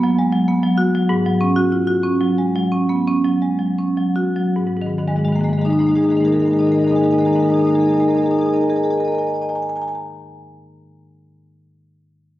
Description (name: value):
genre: classical, contemporary piece for solo marimba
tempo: 75-100 BPM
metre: 5/4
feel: rubato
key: unclear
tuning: A4 = 435 Hz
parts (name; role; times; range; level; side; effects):
- marimba with medium hard mallets; solo; 0.0-10.0 s; G#2 to D#6; -16 LUFS; equal; none
room: wet recital hall reverb, RT60 1.5 s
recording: recorded on a phone in the room, club reverb, compression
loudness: -15 LUFS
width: side -14 dB against mid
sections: 0.0-4.6 A section; 4.6-8.5 B section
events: slowing down 0.0-4.6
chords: 0.0 G#m7; 1.1 G#7sus4; 4.6 G#sus2